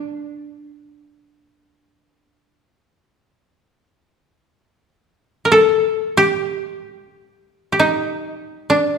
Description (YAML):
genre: japanese traditional, Japanese chamber music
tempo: free time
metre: none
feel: none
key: D miyako bushi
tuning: A4 = 440 Hz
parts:
  - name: koto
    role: solo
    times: 0.0-9.0 s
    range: Bb3 to Bb4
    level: -16 LUFS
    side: equal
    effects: none
room: moderate recital hall reverb, RT60 1.6 s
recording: recorded in a church or concert hall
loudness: -15 LUFS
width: side -6 dB against mid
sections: 0.0-9.0 A section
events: none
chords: none